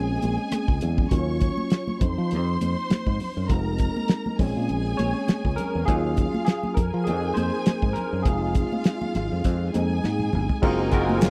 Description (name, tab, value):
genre	lush 1970s-style soul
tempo	101 BPM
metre	4/4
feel	swing 54% on 16ths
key	unclear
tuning	A4 = 440 Hz
part	warm studio string section	second line	0.0-11.3 s	F4 to Db6	-35 LUFS	equal	none
part	barky tine electric piano	accompaniment	0.0-11.3 s	F3 to Eb5	-30 LUFS	equal	ensemble chorus
part	fingered electric bass	bass	0.0-11.3 s	F1 to F3	-28 LUFS	equal	none
part	cloth-damped thuddy drum kit	drums	0.2-11.3 s	crash cymbal, hi-hat, kick drum, rim click, snare drum, toms	-25 LUFS	equal	none
part	congas	percussion	0.2-11.2 s	none	-34 LUFS	equal	none
part	warm horn section	stabs	10.6-11.3 s	F3 to F4	-32 LUFS	equal	none
part	group handclap	percussion	11.2-11.3 s	none	-37 LUFS	equal	none
room	little or no reverb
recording	dry, close 1970s-style studio recording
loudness	-24 LUFS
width	mono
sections	0.0-10.6 A section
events	tine electric piano solo 0.0-10.6; drum fill 10.0-10.6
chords	0.0 Bbm9; 1.1 Ebm9; 2.0 Fm7; 4.4 Bbm9; 5.9 Ebm9; 6.8 Fm7; 10.6 Gbmaj9#11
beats	0.52 | 1.12 1.71 2.31 2.90 | 3.50 4.09 4.69 5.28 | 5.88 6.47 7.07 7.66 | 8.25 8.85 9.44 10.04 | 10.63 11.22